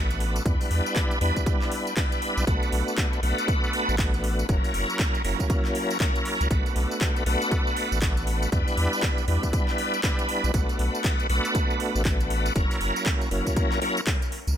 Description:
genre	deep house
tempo	119 BPM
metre	4/4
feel	swing 61% on 16ths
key	B minor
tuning	A4 = 443 Hz
part	bright tonewheel organ	stabs	0.0-14.0 s	F#3 to B4	-27 LUFS	equal	chorus vibrato, slow rotary speaker, sidechain pumping, dub echo
part	round analog bass	bass	0.0-14.5 s	F#1 to E2	-26 LUFS	equal	sidechain pumping
part	house drum kit	drums	0.1-14.6 s	handclaps, hi-hat, tambourine	-33 LUFS	equal	overdrive
part	electronic kick drum	drums	0.5-14.2 s	none	-25 LUFS	equal	none
room	little or no reverb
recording	none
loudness	-22 LUFS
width	side -10 dB against mid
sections	0.0-14.6 A section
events	none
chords	0.5 Em7; 2.5 Bm7; 4.5 F#7; 6.5 Bm7; 8.5 Em7; 10.5 Bm7; 12.6 F#7

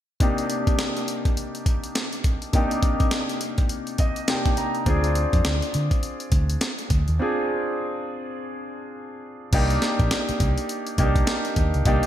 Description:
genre	R&B, new jack swing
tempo	103 BPM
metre	4/4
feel	swing 60% on 16ths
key	C minor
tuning	A4 = 441 Hz
part	warm concert grand piano	accompaniment	0.2-12.1 s	C3 to Bb5	-26 LUFS	equal	lush chorus
part	breakbeat sampler-style drum kit	drums	0.2-12.1 s	crash cymbal, hi-hat, kick drum, snare drum	-23 LUFS	equal	gated reverb
part	vintage muted fingered electric bass	bass	4.9-12.0 s	Bb1 to D3	-23 LUFS	equal	tube saturation
room	light reverb, digital ambience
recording	bright 1980s-style digital production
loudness	-21 LUFS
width	side -11 dB against mid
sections	0.2-9.5 A section; 9.5-12.1 B section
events	grand piano fill 3.7-4.9; break 7.2-9.5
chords	0.2 Cm7; 4.9 Dm7b5; 9.5 Cm7

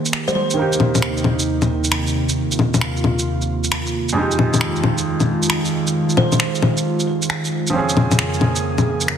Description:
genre	future garage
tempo	134 BPM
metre	4/4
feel	swing 66% on 16ths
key	F minor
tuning	A4 = 441 Hz
part	felt-muted upright piano	accompaniment	0.0-9.2 s	F2 to Ab4	-24 LUFS	right 2 dB	low-pass filter, tape echo
part	airy breathy pad	sustained chords	0.0-9.2 s	Eb2 to Ab4	-21 LUFS	right 1 dB	chorus, vintage 12-bit sampler grit
part	downlifter	sound effects	0.0-0.6 s	none	-44 LUFS	equal	none
part	electronic shaker, finger snaps and bongos	drums	0.1-9.2 s	none	-19 LUFS	left 2 dB	studio reverb, soft clipping on snare
part	kalimba	melody	0.3-0.4, 6.2-6.4 s	C5	-25 LUFS	right 2 dB	tape echo
room	moderate lush hall reverb, RT60 1.9 s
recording	dense, heavily limited modern master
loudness	-16 LUFS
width	side -8 dB against mid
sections	0.0-9.2 A section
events	filter sweep on analog synth pad 0.0-9.2; filter sweep on felt piano 0.0-9.2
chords	0.0 Eb; 0.6 Cm7/Eb; 4.2 Fm7; 7.7 Bbm7/F

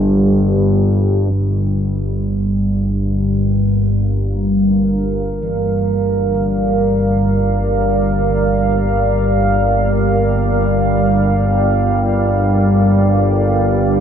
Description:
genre	dark ambient drone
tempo	free time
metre	none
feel	none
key	G minor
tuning	A4 = 441 Hz
part	gamelan-type bossed gongs	arpeggios	0.0-13.7 s	D3 to E3	-34 LUFS	right 1 dB	none
part	analog drone	drone	0.0-14.0 s	G1 to G2	-15 LUFS	equal	chorus
part	deep dark ambient pad	sustained chords	3.3-14.0 s	G3 to F5	-17 LUFS	right 1 dB	chorus, built-in reverb
room	wet huge ambient reverb, RT60 8.7 s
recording	none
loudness	-13 LUFS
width	side -8 dB against mid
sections	0.0-1.3 A section; 1.3-14.0 B section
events	filter sweep on synth drone 1.3-14.0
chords	0.0 Gm

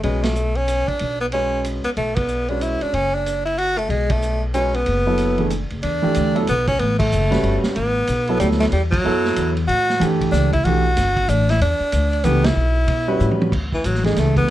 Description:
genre	modal jazz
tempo	187 BPM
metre	3/4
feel	swing 63% on 8ths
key	B dorian, E dorian from 5.8 s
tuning	A4 = 435 Hz
part	bright tenor saxophone	melody	0.0-14.5 s	E3 to F#4	-21 LUFS	equal	none
part	warm grand piano	accompaniment	0.0-14.5 s	E3 to B4	-22 LUFS	right 2 dB	none
part	upright bass	bass	0.0-14.5 s	F#1 to B2	-21 LUFS	left 1 dB	none
part	vintage drum kit	drums	0.0-14.4 s	crash cymbal, hi-hat, kick drum, ride cymbal, snare drum, toms	-27 LUFS	right 2 dB	none
room	light reverb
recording	dark, warm production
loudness	-17 LUFS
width	side -14 dB against mid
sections	0.0-5.8 A section; 5.8-13.5 B section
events	band accent 0.2, 2.1, 4.1, 7.0, 8.9, 12.4; drum fill 13.2-13.5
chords	0.0 Bsus2; 5.8 E13sus4; 13.5 Bm9 (rootless)

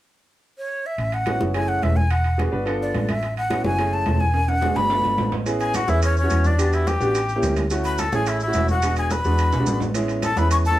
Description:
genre	Afro-Cuban jazz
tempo	214 BPM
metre	4/4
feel	straight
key	A major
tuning	A4 = 440 Hz
part	breathy jazz flute	melody	0.6-10.8 s	C#5 to C#6	-24 LUFS	left 1 dB	none
part	hollow-body short-scale fingered electric bass	bass	1.0-10.8 s	E1 to E2	-22 LUFS	equal	none
part	congas	percussion	1.0-10.8 s	none	-30 LUFS	equal	none
part	timbales	percussion	1.0-10.6 s	none	-31 LUFS	right 5 dB	none
part	warm baby grand piano	accompaniment	1.3-10.8 s	G#3 to B4	-25 LUFS	right 1 dB	none
part	maracas	percussion	5.5-10.8 s	none	-36 LUFS	right 3 dB	none
part	warm oboe	second line	5.6-10.8 s	C#4 to C#5	-27 LUFS	left 3 dB	none
room	wet studio reverb, RT60 0.6 s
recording	band playing live in one room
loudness	-19 LUFS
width	side -14 dB against mid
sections	1.0-5.5 A section; 5.5-10.8 B section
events	drum fill 4.3-5.5, 9.5-9.9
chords	0.0 N.C.; 1.0 A6; 1.5 F#m7; 2.1 E9; 2.7 G7; 3.2 A6; 3.8 F#m7; 4.3 E9; 4.9 G7; 5.5 Amaj7; 6.6 Em7; 7.1 A7b9; 7.7 Dmaj9; 8.8 E9; 9.9 Amaj9

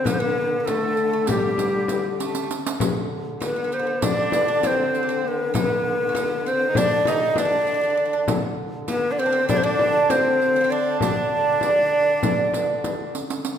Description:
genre	Turkish makam ensemble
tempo	197 BPM (eighths)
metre	9/8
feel	straight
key	D makam hicaz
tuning	A4 = 440 Hz
part	breathy ney	melody	0.0-13.1 s	G4 to Eb5	-22 LUFS	equal	none
part	Greek bouzouki	second line	0.0-13.1 s	G3 to Eb4	-30 LUFS	right 6 dB	none
part	rich cello	second line	0.0-13.1 s	G3 to Eb4	-28 LUFS	left 2 dB	none
part	dark duduk	drone	0.0-13.6 s	D3	-32 LUFS	equal	none
part	frame drum	percussion	0.1-13.0 s	none	-27 LUFS	left 4 dB	none
part	riq	percussion	0.1-13.6 s	none	-32 LUFS	right 4 dB	none
room	wet concert hall reverb, RT60 1.9 s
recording	minimal, uncompressed stereo recording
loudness	-19 LUFS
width	side -8 dB against mid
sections	0.0-13.6 A section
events	drum fill 2.2-2.8, 13.1-13.6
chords	none

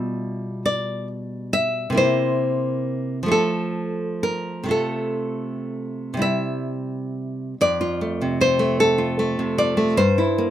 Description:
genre	romantic piece for solo classical guitar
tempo	38-52 BPM (dotted quarters)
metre	6/8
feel	rubato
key	F major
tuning	A4 = 441 Hz
part	nylon-string guitar	solo	0.0-10.5 s	F2 to E5	-20 LUFS	equal	none
room	light reverb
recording	minimal, uncompressed stereo recording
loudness	-20 LUFS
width	side -11 dB against mid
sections	0.0-7.6 A section; 7.6-10.5 B section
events	none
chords	0.0 G7/B; 2.0 C7; 3.3 F; 4.7 F/C; 6.2 C; 7.6 F; 10.0 Edim/G

